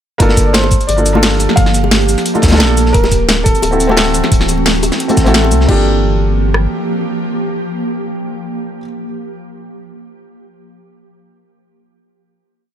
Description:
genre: liquid drum and bass.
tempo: 175 BPM.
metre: 4/4.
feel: swing 53% on 16ths.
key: G dorian.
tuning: A4 = 444 Hz.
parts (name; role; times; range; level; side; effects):
clear baby grand piano; melody; 0.2-8.8 s; G4 to F5; -20 LUFS; right 1 dB; dub echo.
felt-muted upright piano; accompaniment; 0.2-8.8 s; Bb3 to A4; -18 LUFS; equal; none.
ethereal airy pad; sustained chords; 0.8-8.8 s; E3 to G4; -19 LUFS; right 2 dB; ensemble chorus, built-in reverb.
warm sub bass; bass; 0.2-6.7 s; D1 to D2; -15 LUFS; equal; none.
crunchy breakbeat drum kit; drums; 0.2-5.7 s; hi-hat, snare drum; -21 LUFS; equal; high-pass filter on hats, high-pass filter on snare, high-pass filter on room.
drum and bass drum kit; drums; 0.2-6.6 s; kick drum, rim click; -13 LUFS; equal; none.
drum and bass drum kit; drums; 0.2-5.8 s; cabasa, crash cymbal, hi-hat, snare drum; -16 LUFS; equal; none.
bongos and congas; percussion; 0.3-5.6 s; none; -20 LUFS; left 7 dB; none.
room: light reverb.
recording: none.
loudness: -10 LUFS.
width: side -10 dB against mid.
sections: 0.2-5.7 drop; 5.7-8.4 final chord.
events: drop 0.2-5.7.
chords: 0.2 Gm7; 2.9 D9; 5.7 Gm7.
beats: | 0.20 0.54 0.89 1.23 | 1.57 1.92 2.26 2.60 | 2.94 3.29 3.63 3.97 | 4.32 4.66 5.00 5.34 | 5.69 6.03 6.37 6.71 | 7.06 7.40 7.74 8.09.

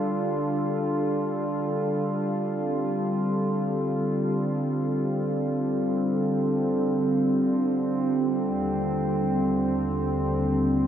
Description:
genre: ambient.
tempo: free time.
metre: none.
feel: none.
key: unclear.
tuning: A4 = 439 Hz.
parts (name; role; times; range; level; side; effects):
warm analog pad; solo; 0.0-10.9 s; Eb2 to A4; -23 LUFS; equal; chorus, diffuse ambient delay.
room: wet huge ambient reverb, RT60 8.4 s.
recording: none.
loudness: -23 LUFS.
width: side -9 dB against mid.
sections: 0.0-10.9 A section.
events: none.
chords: 0.0 F69/D; 8.4 Eb69.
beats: free time.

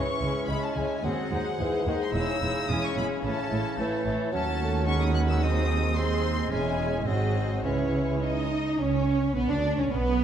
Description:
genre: quick classical-period movement for symphony orchestra.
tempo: 108 BPM.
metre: 2/4.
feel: straight.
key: C# minor.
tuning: A4 = 440 Hz.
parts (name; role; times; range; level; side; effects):
rich studio violin section; melody; 0.0-10.2 s; B3 to F#6; -34 LUFS; left 4 dB; none.
bright clarinet; second line; 0.0-8.5 s; A3 to D#4; -35 LUFS; left 3 dB; none.
rich studio violin section; second line; 0.0-10.2 s; F#4 to D#5; -35 LUFS; left 2 dB; none.
mellow bassoon; accompaniment; 0.0-8.5 s; C#3 to G#3; -33 LUFS; right 2 dB; none.
warm studio viola section; accompaniment; 0.0-10.2 s; E3 to G#4; -35 LUFS; equal; none.
rich studio cello section; bass; 0.2-10.2 s; D#2 to D#4; -30 LUFS; right 2 dB; none.
rich studio double bass section; bass; 0.2-10.2 s; E1 to D#2; -30 LUFS; right 2 dB; none.
room: moderate scoring stage reverb, RT60 1.8 s.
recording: dark, warm production.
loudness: -24 LUFS.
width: side -9 dB against mid.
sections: 0.0-8.8 A section; 8.8-10.2 B section.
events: none.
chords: 0.0 C#m; 1.0 G#7/D#; 2.1 C#m/E; 3.2 A; 4.3 D#m7b5; 5.4 G#7/D#; 6.5 C#m/E; 7.1 G#7; 7.6 C#m; 8.8 N.C.; 9.4 Bmadd9.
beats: 0.48 | 1.04 1.59 | 2.15 2.70 | 3.25 3.79 | 4.33 4.87 | 5.42 5.96 | 6.51 7.07 | 7.64 8.23 | 8.80 9.37 | 9.92.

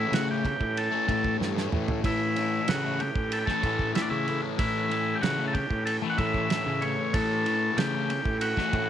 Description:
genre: psychedelic rock.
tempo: 94 BPM.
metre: 4/4.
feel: straight.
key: A mixolydian.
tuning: A4 = 440 Hz.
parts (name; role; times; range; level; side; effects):
combo organ; melody; 0.0-8.9 s; D4 to F#5; -29 LUFS; left 1 dB; slapback echo.
pedal harmonium; sustained chords; 0.0-8.9 s; E3 to C#5; -38 LUFS; right 13 dB; none.
fuzz guitar; riff; 0.0-8.9 s; A2 to A3; -32 LUFS; left 9 dB; distortion, phaser.
fuzz fingered electric bass; bass; 0.0-8.9 s; G2 to C#3; -31 LUFS; equal; overdrive.
cloth-damped thuddy drum kit; drums; 0.1-8.9 s; kick drum, ride cymbal, snare drum, toms; -32 LUFS; right 3 dB; none.
room: light reverb, studio reverb.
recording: 1960s-style stereo with parts hard left and right.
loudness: -24 LUFS.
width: side -10 dB against mid.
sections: 0.0-8.9 A section.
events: drum fill 1.4-2.0.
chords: 0.0 A.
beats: 0.12 0.76 1.40 | 2.04 2.68 3.31 3.95 | 4.59 5.23 5.87 6.50 | 7.14 7.78 8.42.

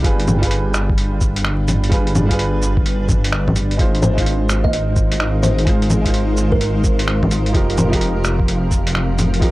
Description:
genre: future garage.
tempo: 128 BPM.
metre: 4/4.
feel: swing 65% on 16ths.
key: unclear.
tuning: A4 = 442 Hz.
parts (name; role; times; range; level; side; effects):
bright upright piano; accompaniment; 0.0-9.5 s; F3 to C5; -24 LUFS; right 2 dB; vintage 12-bit sampler grit, sidechain pumping, tape echo.
granular cloud pad; sustained chords; 0.0-9.5 s; F3 to G5; -26 LUFS; left 1 dB; built-in reverb, vintage 12-bit sampler grit, sidechain pumping.
dark detuned saw bass; bass; 0.0-9.5 s; F1 to Ab1; -19 LUFS; equal; sidechain pumping.
electronic kick drum; drums; 0.0-9.5 s; none; -18 LUFS; equal; overdrive, vintage 12-bit sampler grit.
lo-fi sampler-style drum kit; drums; 0.0-9.5 s; bongos, cabasa, finger snaps, hi-hat; -21 LUFS; equal; overdrive, vintage 12-bit sampler grit.
wind-like tuned noise texture; texture; 4.9-9.5 s; F4 to F5; -32 LUFS; right 1 dB; built-in reverb.
kalimba; melody; 4.0-7.0 s; Bb4 to Eb5; -26 LUFS; equal; analog delay.
room: little or no reverb.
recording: dry, gritty hardware recording, vinyl crackle.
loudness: -14 LUFS.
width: side -18 dB against mid.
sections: 0.0-9.5 A section.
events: none.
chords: 0.0 G7b9; 3.8 Ab6; 7.5 F9sus4.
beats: | 0.04 0.51 0.98 1.45 | 1.92 2.39 2.86 3.33 | 3.79 4.26 4.73 5.20 | 5.67 6.14 6.61 7.08 | 7.54 8.01 8.48 8.95 | 9.42.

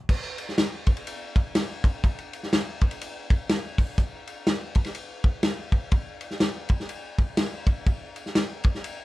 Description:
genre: soul.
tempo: 123 BPM.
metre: 4/4.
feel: swing 60% on 8ths.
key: none.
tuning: none.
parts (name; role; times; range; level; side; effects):
warm soul drum kit; drums; 0.1-9.0 s; crash cymbal, hi-hat, kick drum, ride cymbal, snare drum; -24 LUFS; equal; none.
room: light reverb.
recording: dark, warm production.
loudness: -24 LUFS.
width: side -18 dB against mid.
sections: 0.1-9.0 A section.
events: none.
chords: none.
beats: | 0.09 0.57 1.06 1.55 | 2.03 2.52 3.01 3.49 | 3.98 4.46 4.95 5.44 | 5.92 6.41 6.90 7.38 | 7.87 8.36 8.84.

